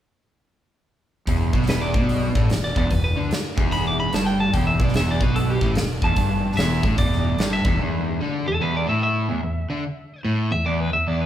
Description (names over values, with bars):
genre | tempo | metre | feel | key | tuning
blues rock power trio and southern rock | 147 BPM | 4/4 | swing 64% on 8ths | E minor | A4 = 438 Hz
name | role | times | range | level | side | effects
crunchy overdriven guitar | riff | 1.3-11.3 s | E2 to D3 | -23 LUFS | equal | none
fuzz fingered electric bass | bass | 1.3-7.8 s | E1 to D2 | -25 LUFS | equal | overdrive
huge arena drum kit | drums | 1.3-7.7 s | hi-hat, kick drum, snare drum | -24 LUFS | equal | none
lightly driven lead guitar | melody | 1.7-11.3 s | G4 to D6 | -26 LUFS | right 1 dB | none
room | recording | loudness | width
moderate large studio reverb, RT60 1.2 s | band playing live in one room | -19 LUFS | side -11 dB against mid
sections
1.3-7.8 A section; 7.8-11.3 B section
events
none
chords
1.3 Em; 7.8 N.C.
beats
| 1.27 1.68 2.09 2.50 | 2.91 3.31 3.72 4.13 | 4.54 4.95 5.36 5.76 | 6.17 6.58 6.99 7.39 | 7.80 8.21 8.61 9.02 | 9.43 9.83 10.24 10.65 | 11.05